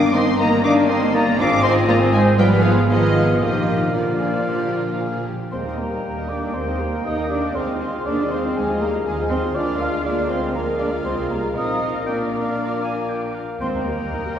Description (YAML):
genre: quick classical-period movement for symphony orchestra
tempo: 118 BPM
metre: 4/4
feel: rubato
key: Eb major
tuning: A4 = 439 Hz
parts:
  - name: muted studio violin section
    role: melody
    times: 0.0-14.4 s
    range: Ab4 to D6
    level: -29 LUFS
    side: left 2 dB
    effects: none
  - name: hollow concert flute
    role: second line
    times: 0.0-14.4 s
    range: F4 to F6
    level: -28 LUFS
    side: left 1 dB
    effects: none
  - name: muted studio violin section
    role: second line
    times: 0.0-14.4 s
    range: Eb4 to F5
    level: -31 LUFS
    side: left 2 dB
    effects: none
  - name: muted studio viola section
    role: accompaniment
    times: 0.0-14.4 s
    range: Eb3 to Bb4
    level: -27 LUFS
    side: equal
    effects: none
  - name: mellow French horn section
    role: sustained chords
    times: 0.0-14.4 s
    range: D3 to D4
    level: -26 LUFS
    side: left 2 dB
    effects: none
  - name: muted studio cello section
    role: bass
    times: 0.0-14.4 s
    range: D3 to F4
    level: -26 LUFS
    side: right 2 dB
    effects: none
  - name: muted studio double bass section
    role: bass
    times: 0.0-14.3 s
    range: G1 to Eb2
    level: -26 LUFS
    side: right 2 dB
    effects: none
  - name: bright oboe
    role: second line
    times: 0.2-14.4 s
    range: Eb5 to Ab5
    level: -31 LUFS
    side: right 1 dB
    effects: none
  - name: dark clarinet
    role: second line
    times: 0.2-13.3 s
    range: Eb4 to C5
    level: -29 LUFS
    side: equal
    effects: none
  - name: warm bassoon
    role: accompaniment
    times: 0.2-14.4 s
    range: Ab3 to C4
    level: -28 LUFS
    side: equal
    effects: none
  - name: dark trumpet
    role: stabs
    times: 5.5-14.4 s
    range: Ab4 to F5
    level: -29 LUFS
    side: right 1 dB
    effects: none
room: wet concert hall reverb, RT60 2.3 s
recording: heard from further back in the room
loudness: -18 LUFS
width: side -9 dB against mid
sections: 0.0-5.5 A section; 5.5-14.4 B section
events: none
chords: 0.0 Eb/G; 1.4 Fm7/Ab; 2.4 Fm7b5/Ab; 3.4 Bb; 5.5 Eb; 7.6 Fm7/Eb; 9.6 Bb7/D; 11.6 Bb; 13.6 Eb